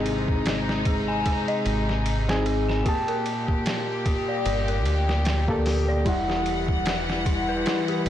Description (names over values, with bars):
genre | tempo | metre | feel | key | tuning
trip hop | 75 BPM | 4/4 | swing 56% on 16ths | unclear | A4 = 440 Hz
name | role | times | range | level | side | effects
bright reed electric piano | accompaniment | 0.0-8.1 s | G3 to A5 | -30 LUFS | equal | harmonic tremolo, tape echo
clear studio string section | sustained chords | 0.0-8.1 s | Bb2 to F#5 | -28 LUFS | left 1 dB | none
dark detuned synth bell | arpeggios | 0.0-8.1 s | E4 to Ab5 | -30 LUFS | left 3 dB | chorus, phaser, vintage 12-bit sampler grit, digital delay
deep dub fingered electric bass | bass | 0.0-8.1 s | E1 to D2 | -27 LUFS | equal | transformer saturation
trip hop sampler-style drum kit | drums | 0.1-8.1 s | hi-hat, kick drum, ride cymbal, snare drum | -28 LUFS | equal | none
room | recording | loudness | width
light reverb | blown-out, overdriven recording, vinyl crackle, overdrive | -22 LUFS | side -11 dB against mid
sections
0.0-8.1 A section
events
none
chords
0.0 Ab; 2.9 Gmadd9; 6.1 Emadd9